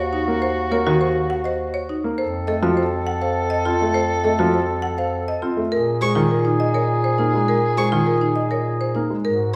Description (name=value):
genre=classical, minimalist pattern music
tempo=102 BPM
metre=3/4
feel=straight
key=Bb minor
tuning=A4 = 440 Hz
part: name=marimba with medium hard mallets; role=melody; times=0.0-9.4 s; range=Bb4 to Gb5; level=-29 LUFS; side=equal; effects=none
part: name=mellow soprano saxophone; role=second line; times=0.0-9.6 s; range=Gb4 to A4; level=-26 LUFS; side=equal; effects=none
part: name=bright bass clarinet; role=bass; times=0.0-9.6 s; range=Eb2 to Bb2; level=-27 LUFS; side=equal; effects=none
part: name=marimba with medium hard mallets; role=arpeggios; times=0.1-9.6 s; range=Eb4 to C5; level=-28 LUFS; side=equal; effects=none
part: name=warm grand piano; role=accompaniment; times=0.3-9.3 s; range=Eb3 to C4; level=-26 LUFS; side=equal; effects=none
part: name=clear violin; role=arpeggios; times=6.0-7.9 s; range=Db6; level=-30 LUFS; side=equal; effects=none
room=wet recital hall reverb, RT60 1.5 s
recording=recorded in a church or concert hall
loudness=-20 LUFS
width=mono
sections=0.0-9.6 A section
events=none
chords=0.0 Ebm7; 2.2 F7; 5.7 Bb7sus2